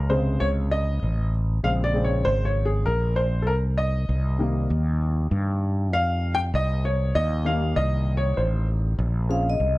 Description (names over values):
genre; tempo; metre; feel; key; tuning
hip hop, jazz-hop; 98 BPM; 4/4; swing 62% on 16ths; Bb dorian; A4 = 440 Hz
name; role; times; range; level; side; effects
warm upright piano; accompaniment; 0.0-9.5 s; C3 to G5; -26 LUFS; left 1 dB; plate reverb
fretless electric bass; bass; 0.0-9.8 s; Ab1 to G2; -23 LUFS; equal; none
vibraphone with medium mallets; melody; 9.3-9.8 s; Eb5 to F5; -24 LUFS; left 1 dB; none
room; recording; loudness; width
light reverb; none; -21 LUFS; side -19 dB against mid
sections
0.0-9.0 A section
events
upright piano solo 0.0-9.0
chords
0.0 Bbm9; 4.1 Cm7; 9.0 Bbm9